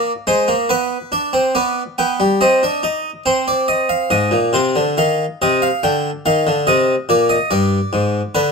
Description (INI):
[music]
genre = classical, baroque-style 3-part fugue for harpsichord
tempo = 70 BPM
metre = 4/4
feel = straight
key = unclear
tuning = A4 = 440 Hz
[part]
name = harpsichord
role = solo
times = 0.0-8.5 s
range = G2 to G5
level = -14 LUFS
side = equal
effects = none
[sound]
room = moderate large studio reverb, RT60 1.0 s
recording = none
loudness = -14 LUFS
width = side -4 dB against mid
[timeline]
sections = 0.0-4.1 A section; 4.1-8.5 B section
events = none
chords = 0.0 D7(b5, no3); 0.7 G/B; 2.4 Cm; 4.1 Ab; 5.8 Bbadd11; 7.5 G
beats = | 0.68 1.53 2.39 3.24 | 4.10 4.96 5.82 6.67 | 7.52 8.37